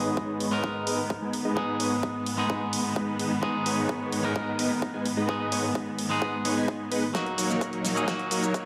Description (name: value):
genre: EDM, festival progressive house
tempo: 129 BPM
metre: 4/4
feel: straight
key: G# minor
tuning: A4 = 440 Hz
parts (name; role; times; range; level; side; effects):
- clean electric guitar; accompaniment; 0.0-8.7 s; G#2 to A#4; -33 LUFS; equal; sidechain pumping, dub echo
- rich symphonic string section; sustained chords; 0.0-8.7 s; D#2 to B3; -36 LUFS; equal; sidechain pumping
- big supersaw lead; riff; 0.0-8.7 s; F#3 to G#5; -32 LUFS; equal; sidechain pumping, low-pass filter, dub echo
- electronic kick drum; drums; 0.2-8.6 s; none; -35 LUFS; equal; high-pass filter on kick
- big-room dance drum kit; drums; 0.4-8.6 s; hi-hat, shaker, snare drum; -36 LUFS; equal; none
- riser; sound effects; 7.1-8.7 s; none; barely audible; none; none
room: moderate lush hall reverb, RT60 2.1 s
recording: high-pass filter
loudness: -28 LUFS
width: mono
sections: 0.0-8.7 A section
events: build-up 0.0-8.7; filter sweep on supersaw synth 0.0-8.7; drum fill 7.1-8.7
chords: 0.0 G#m; 7.1 D#m